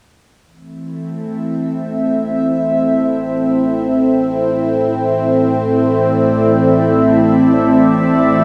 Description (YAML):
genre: ambient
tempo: free time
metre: none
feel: none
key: A minor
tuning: A4 = 439 Hz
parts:
  - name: phased analog pad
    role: sustained chords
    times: 0.7-8.4 s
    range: E3 to E5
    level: -15 LUFS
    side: equal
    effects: phaser, chorus
  - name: analog drone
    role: bass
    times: 3.4-8.4 s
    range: A1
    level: -30 LUFS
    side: equal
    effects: chorus
  - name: bubbling stepped-filter texture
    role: texture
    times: 1.4-8.4 s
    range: E4 to E5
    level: -23 LUFS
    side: equal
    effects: chorus, built-in reverb
room: wet huge ambient reverb, RT60 7.5 s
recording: in a vast, echoing space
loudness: -14 LUFS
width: mono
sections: 0.4-8.4 A section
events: fade-in on synth drone 0.4-8.4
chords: 0.4 Am